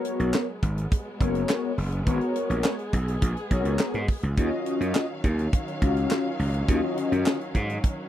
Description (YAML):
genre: early-eighties boogie funk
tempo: 104 BPM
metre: 4/4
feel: straight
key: unclear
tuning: A4 = 440 Hz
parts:
  - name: mellow synth brass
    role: accompaniment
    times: 0.0-7.4 s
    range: Cb4 to F5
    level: -27 LUFS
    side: left 3 dB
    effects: chorus
  - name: warm studio string section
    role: sustained chords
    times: 0.0-8.1 s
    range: Eb3 to F5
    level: -35 LUFS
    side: equal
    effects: none
  - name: tight funk drum kit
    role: drums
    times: 0.0-8.0 s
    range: handclaps, hi-hat, kick drum, snare drum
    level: -25 LUFS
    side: equal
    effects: none
  - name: gritty slap bass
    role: bass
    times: 0.2-7.8 s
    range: Gb1 to Ab2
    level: -26 LUFS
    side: equal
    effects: overdrive
room: little or no reverb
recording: dry, close 1970s-style studio recording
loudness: -23 LUFS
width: side -12 dB against mid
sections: 0.0-8.1 A section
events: none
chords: 0.0 Abm11; 4.4 Ebm9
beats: 0.34 0.92 1.49 | 2.07 2.65 3.22 3.80 | 4.38 4.95 5.53 6.11 | 6.68 7.26 7.84